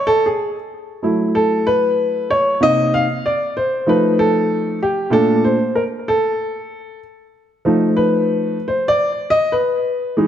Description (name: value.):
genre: hip hop.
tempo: 95 BPM.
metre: 4/4.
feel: swing 58% on 16ths.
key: unclear.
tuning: A4 = 440 Hz.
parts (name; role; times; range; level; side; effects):
warm upright piano; solo; 0.0-10.3 s; A#2 to E#5; -15 LUFS; equal; analog delay.
room: wet recital hall reverb, RT60 1.5 s.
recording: dark, warm production.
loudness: -15 LUFS.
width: side -10 dB against mid.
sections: 0.0-10.3 A section.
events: upright piano solo 0.0-10.3.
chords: 0.1 F#m7; 2.6 Cm7; 3.9 F7; 5.1 A#maj7; 7.6 F7#11.